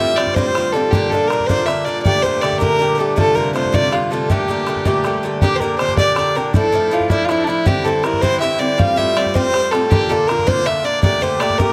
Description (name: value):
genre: celtic folk, Celtic jig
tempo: 107 BPM (dotted quarters)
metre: 6/8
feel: straight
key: G dorian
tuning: A4 = 440 Hz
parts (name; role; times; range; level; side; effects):
- warm fiddle; melody; 0.0-11.7 s; D4 to F5; -20 LUFS; equal; none
- Irish bouzouki; accompaniment; 0.0-11.7 s; G2 to G4; -22 LUFS; equal; none
- pedal harmonium; drone; 0.0-5.5 s; G2 to D3; -30 LUFS; equal; none
- bodhran; percussion; 0.2-11.7 s; none; -23 LUFS; equal; none
room: light reverb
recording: close, detailed microphones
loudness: -17 LUFS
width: mono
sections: 0.0-5.4 A section; 5.4-11.7 A section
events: none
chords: 0.0 Fadd9; 0.9 Bb; 2.1 Gmadd9; 3.2 F6; 4.3 Gmadd9; 5.4 Gm; 6.5 Dmadd9; 7.7 Cadd9; 8.8 Fadd9; 9.9 Bb; 11.0 Gmadd9